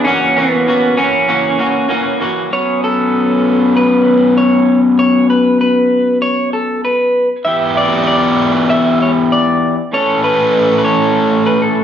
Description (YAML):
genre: rock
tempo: 97 BPM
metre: 4/4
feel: straight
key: unclear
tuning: A4 = 441 Hz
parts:
  - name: electric guitar through a small old amp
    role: melody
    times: 0.0-11.8 s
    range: B3 to E5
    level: -15 LUFS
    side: right 1 dB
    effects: none
  - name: overdriven electric guitar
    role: riff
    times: 0.0-11.8 s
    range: E3 to A4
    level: -13 LUFS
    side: left 1 dB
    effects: none
room: wet large studio reverb, RT60 0.9 s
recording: band playing live in one room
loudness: -10 LUFS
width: side -9 dB against mid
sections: 0.0-2.5 A section; 2.5-11.8 B section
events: none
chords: 0.1 F#7; 2.5 Bsus2; 7.4 Em; 9.9 A